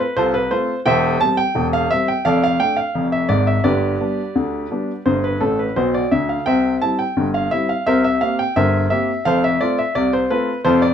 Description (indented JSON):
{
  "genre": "ragtime piano",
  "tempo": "86 BPM",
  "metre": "2/4",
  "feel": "straight",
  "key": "C major",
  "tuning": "A4 = 436 Hz",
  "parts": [
    { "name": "warm grand piano", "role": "solo", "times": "0.0-10.9 s", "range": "E1 to A5", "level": "-16 LUFS", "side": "equal", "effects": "none" }
  ],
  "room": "moderate studio reverb, RT60 0.7 s",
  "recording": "none",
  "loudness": "-16 LUFS",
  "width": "side -8 dB against mid",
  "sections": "0.0-10.9 A section",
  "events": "grand piano fill 5.4-6.5",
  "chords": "0.0 F; 0.9 C/E; 2.2 Dm/F; 3.6 G; 6.5 C; 7.9 C5; 9.3 F"
}